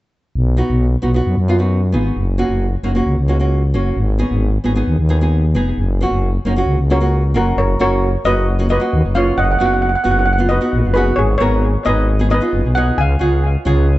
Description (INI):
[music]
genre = calypso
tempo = 133 BPM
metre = 4/4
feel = straight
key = F# major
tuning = A4 = 440 Hz
[part]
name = growling FM bass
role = bass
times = 0.4-14.0 s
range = E#1 to F#2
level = -16 LUFS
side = equal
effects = none
[part]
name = nylon-string guitar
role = accompaniment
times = 0.6-13.9 s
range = A#3 to G#4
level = -19 LUFS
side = right 1 dB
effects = dub echo
[part]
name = steel pan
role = melody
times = 6.9-14.0 s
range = F#4 to G#5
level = -18 LUFS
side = equal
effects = dub echo
[sound]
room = light reverb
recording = echo-heavy mix, nothing above 8.0 kHz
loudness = -13 LUFS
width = side -16 dB against mid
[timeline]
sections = 0.3-7.6 A section; 7.6-14.0 B section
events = none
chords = 0.3 B; 2.2 F#; 4.0 G#m; 5.8 F#; 7.6 F#6; 9.4 B/F#; 13.0 C#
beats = | 0.35 0.80 1.25 1.71 | 2.16 2.61 3.07 3.52 | 3.97 4.42 4.88 5.33 | 5.78 6.23 6.68 7.14 | 7.59 8.04 8.49 8.94 | 9.39 9.84 10.29 10.74 | 11.19 11.64 12.09 12.54 | 12.99 13.44 13.89